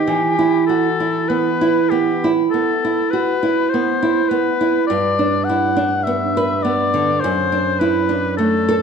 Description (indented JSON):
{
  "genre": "romantic duo for oboe and classical guitar",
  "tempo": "51 BPM",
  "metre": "4/4",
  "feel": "rubato",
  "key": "E minor",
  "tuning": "A4 = 443 Hz",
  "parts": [
    { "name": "clear oboe", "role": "melody", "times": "0.0-8.8 s", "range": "G4 to F#5", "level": "-19 LUFS", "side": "left 5 dB", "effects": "none" },
    { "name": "nylon-string guitar", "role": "accompaniment", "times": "0.0-8.8 s", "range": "F#2 to B4", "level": "-17 LUFS", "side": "right 4 dB", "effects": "none" }
  ],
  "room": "wet recital hall reverb, RT60 1.4 s",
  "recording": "none",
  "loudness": "-15 LUFS",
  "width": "side -6 dB against mid",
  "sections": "0.0-8.8 A section",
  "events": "none",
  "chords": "0.1 E5; 4.9 G; 7.2 D/F#",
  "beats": "| 0.07 1.29 2.50 3.71 | 4.88 6.06 7.22 8.39"
}